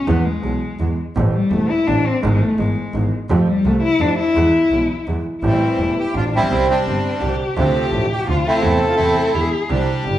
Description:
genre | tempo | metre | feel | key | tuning
tango | 168 BPM | 3/4 | rubato | A minor from 5.4 s | A4 = 440 Hz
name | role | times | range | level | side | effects
dark cello | second line | 0.0-10.2 s | G3 to A4 | -19 LUFS | left 2 dB | none
warm grand piano | accompaniment | 0.1-10.2 s | E1 to G#4 | -22 LUFS | right 3 dB | none
clear double bass | bass | 0.1-10.2 s | E1 to F2 | -22 LUFS | equal | none
bandoneon | melody | 5.5-10.2 s | E3 to G4 | -20 LUFS | right 1 dB | slapback echo
room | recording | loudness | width
wet large studio reverb, RT60 1.2 s | heard from further back in the room, nothing above 10.8 kHz | -15 LUFS | side -12 dB against mid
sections
0.0-5.4 A section; 5.4-10.2 B section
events
cello solo 0.0-5.4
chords
0.1 E; 1.2 Am7; 2.2 E/G#; 3.3 Fadd9; 4.4 E; 5.4 Am7; 6.5 Csus2; 7.6 Dm7; 8.6 Am/E; 9.3 E7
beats
| 0.08 0.43 0.80 | 1.16 1.52 1.88 | 2.23 2.59 2.94 | 3.30 3.65 4.00 | 4.36 4.71 5.07 | 5.43 5.79 6.15 | 6.51 6.86 7.22 | 7.57 7.92 8.28 | 8.63 8.98 9.34 | 9.70 10.06

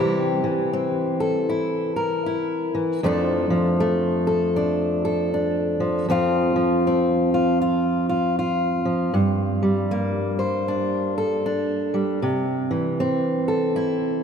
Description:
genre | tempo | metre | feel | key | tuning
folk, solo fingerstyle acoustic guitar | 78 BPM | 4/4 | swing 62% on 8ths | F major | A4 = 440 Hz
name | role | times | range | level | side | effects
fingerpicked steel-string acoustic guitar | solo | 0.0-14.2 s | F2 to C5 | -20 LUFS | equal | none
room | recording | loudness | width
wet cathedral reverb, RT60 4.7 s | dreamy mix soaked in reverb | -20 LUFS | side -7 dB against mid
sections
0.0-14.2 A section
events
none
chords
0.0 C; 3.0 F6; 6.1 F5; 9.2 Gmadd9; 12.2 C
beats
0.73 1.49 2.26 | 3.02 3.79 4.55 5.32 | 6.08 6.85 7.62 8.38 | 9.15 9.92 10.69 11.45 | 12.22 12.99 13.76

